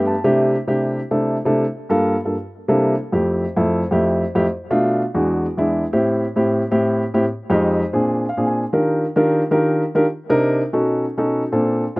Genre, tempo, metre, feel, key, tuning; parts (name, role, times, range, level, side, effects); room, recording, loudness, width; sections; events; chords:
jazz; 172 BPM; 4/4; straight; C major, F major from 3.0 s; A4 = 440 Hz
dark baby grand piano; solo; 0.0-12.0 s; E2 to A5; -16 LUFS; equal
light reverb; recorded outdoors, with no room sound, nothing above 10.8 kHz; -16 LUFS; side -25 dB against mid
0.0-3.0 A section; 3.0-12.0 B section
grand piano fill 0.0, 8.1-8.6
0.2 C69; 1.6 Gm7; 2.3 C13; 3.0 Fmaj7; 4.4 Bm7b5; 5.1 E7; 5.8 Am7; 7.2 Fm7; 7.9 Bb7; 8.6 Ebmaj9; 10.0 Cm7; 10.7 B9; 11.4 Bbmaj7